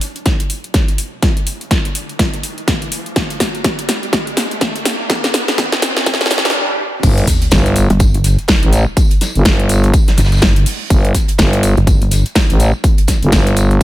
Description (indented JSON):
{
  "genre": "bass house",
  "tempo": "124 BPM",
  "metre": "4/4",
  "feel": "swing 59% on 16ths",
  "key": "unclear",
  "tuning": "A4 = 438 Hz",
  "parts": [
    { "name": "big-room dance drum kit", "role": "drums", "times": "0.0-13.8 s", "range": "crash cymbal, hi-hat, snare drum", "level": "-17 LUFS", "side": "equal", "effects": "none" },
    { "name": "riser, swell and sub drop", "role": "sound effects", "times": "0.0-9.0 s", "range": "none", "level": "-23 LUFS", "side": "equal", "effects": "none" },
    { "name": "electronic kick drum", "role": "drums", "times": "0.3-13.8 s", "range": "none", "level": "-14 LUFS", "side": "equal", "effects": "none" },
    { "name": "growling FM bass", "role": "bass", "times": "7.0-13.8 s", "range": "G1 to A1", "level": "-12 LUFS", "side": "equal", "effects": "overdrive, sidechain pumping" },
    { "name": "big rock drum kit", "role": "drums", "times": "7.0-13.8 s", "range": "hi-hat, snare drum, tambourine", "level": "-27 LUFS", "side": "right 1 dB", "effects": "sidechain pumping on hats, high-pass filter on hats, high-pass filter on snare, sidechain pumping on perc, high-pass filter on perc, high-pass filter on room" },
    { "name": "pulsing pluck wobble bass", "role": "bass", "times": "7.9-12.2 s", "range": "G1", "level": "-12 LUFS", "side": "equal", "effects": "chorus, tube saturation, sidechain pumping" }
  ],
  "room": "light reverb",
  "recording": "high-pass filter",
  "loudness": "-12 LUFS",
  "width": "side -15 dB against mid",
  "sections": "0.0-7.0 A section; 7.0-13.8 B section",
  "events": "build-up 0.0-7.0; drum fill 0.0-6.5; riser 0.0-6.5; filter sweep 0.0-7.0; swell 6.1-7.0; stop 6.5-7.0; drop 7.0-13.8; impact 7.0-9.0",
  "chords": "none",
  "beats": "0.26 0.74 | 1.23 1.71 2.19 2.68 | 3.16 3.65 4.13 4.61 | 5.10 5.58 6.07 6.55 | 7.03 7.52 8.00 8.48 | 8.97 9.45 9.94 10.42 | 10.90 11.39 11.87 12.36 | 12.84 13.32 13.81"
}